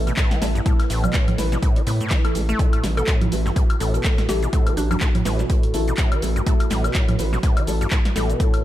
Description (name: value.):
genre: acid house.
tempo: 124 BPM.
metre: 4/4.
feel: swing 57% on 16ths.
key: unclear.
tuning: A4 = 441 Hz.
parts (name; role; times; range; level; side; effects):
dark analog pad; sustained chords; 0.0-8.6 s; A3 to B4; -33 LUFS; equal; chorus, sidechain pumping.
deep mellow chord stab; stabs; 0.0-8.6 s; A3 to B4; -30 LUFS; left 1 dB; wide subtle chorus, analog delay.
round analog bass; bass; 0.0-8.3 s; A1 to A2; -23 LUFS; equal; tube saturation, sidechain pumping.
deep acid bass; riff; 0.1-8.6 s; G2 to A3; -27 LUFS; equal; overdrive, analog chorus, cassette tape, sidechain pumping, analog delay.
open jazz drum kit; drums; 0.1-8.6 s; hi-hat, snare drum; -39 LUFS; right 2 dB; none.
punchy analog drum machine; drums; 0.1-8.6 s; congas, handclaps, hi-hat, shaker, snare drum, woodblock; -27 LUFS; right 1 dB; analog delay.
electronic kick drum; drums; 0.2-8.5 s; none; -20 LUFS; equal; none.
hollow square pluck; melody; 3.0-5.0 s; D4 to A4; -30 LUFS; left 2 dB; chorus, tape echo.
room: little or no reverb.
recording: echo-heavy mix.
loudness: -18 LUFS.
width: side -13 dB against mid.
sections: 0.0-8.6 A section.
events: none.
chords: 0.0 A5.